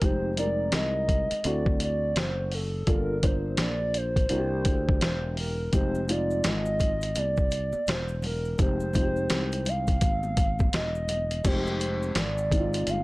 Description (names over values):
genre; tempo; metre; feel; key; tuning
hip hop, jazz-hop; 84 BPM; 4/4; swing 62% on 16ths; F dorian; A4 = 440 Hz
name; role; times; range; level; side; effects
hollow clarinet-like synth lead; melody; 0.0-13.0 s; A4 to F5; -30 LUFS; right 1 dB; chorus
dark upright piano; accompaniment; 0.0-13.0 s; G3 to C5; -31 LUFS; left 1 dB; none
sustaining fretless electric bass; bass; 0.0-13.0 s; E1 to D2; -31 LUFS; equal; none
lo-fi sampler-style drum kit; drums; 0.0-13.0 s; crash cymbal, hi-hat, kick drum, snare drum; -27 LUFS; equal; none
maracas and congas; percussion; 5.7-13.0 s; none; -42 LUFS; equal; none
room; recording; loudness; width
digital ambience; dry, gritty hardware recording; -24 LUFS; side -21 dB against mid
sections
0.0-11.4 A section; 11.4-13.0 B section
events
none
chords
0.0 Fm7; 1.4 D7; 2.9 Gm7; 4.3 C7; 5.7 Fm7